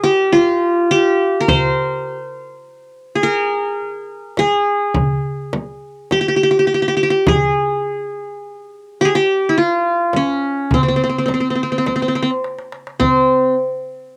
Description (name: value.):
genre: Arabic maqam ensemble.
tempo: 104 BPM (eighths).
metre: 10/8.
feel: straight.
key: C maqam hijaz.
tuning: A4 = 435 Hz.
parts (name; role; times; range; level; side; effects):
qanun; melody; 0.0-13.5 s; C4 to C5; -18 LUFS; equal; cassette tape.
darbuka; percussion; 0.3-13.5 s; none; -26 LUFS; equal; none.
frame drum; percussion; 0.3-13.5 s; none; -23 LUFS; equal; none.
room: wet booth ambience, RT60 0.2 s.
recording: home recording on cassette.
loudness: -17 LUFS.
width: mono.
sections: 0.0-13.0 A section; 13.0-14.2 B section.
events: drum fill 11.9-13.0.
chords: none.